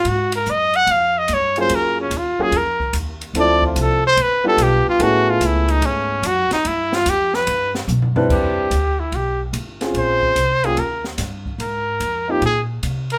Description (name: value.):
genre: jazz, small-group swing and bop.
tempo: 146 BPM.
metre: 4/4.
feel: swing 67% on 8ths.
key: unclear.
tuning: A4 = 439 Hz.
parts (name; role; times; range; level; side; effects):
clear trumpet; melody; 0.0-13.2 s; C#4 to Gb5; -20 LUFS; equal; none.
upright bass; bass; 0.0-13.2 s; G1 to C3; -26 LUFS; equal; none.
open jazz drum kit; drums; 0.0-13.2 s; crash cymbal, hi-hat, kick drum, ride cymbal, snare drum, toms; -31 LUFS; equal; none.
warm grand piano; accompaniment; 1.6-12.4 s; F3 to B4; -23 LUFS; equal; none.
room: moderate club reverb, RT60 0.6 s.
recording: none.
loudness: -18 LUFS.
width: mono.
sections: 0.0-8.3 A section; 8.3-13.2 B section.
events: trumpet solo 0.0-8.3; drum fill 7.9-8.3.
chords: 0.1 Gb69; 0.9 Db; 1.7 Gbmaj9; 3.4 Dm7; 4.2 G7; 5.0 Amaj7; 6.6 G7(no3); 7.5 G6; 8.3 Cmaj9; 9.9 Bbm9; 10.8 Eb; 11.6 Ab69.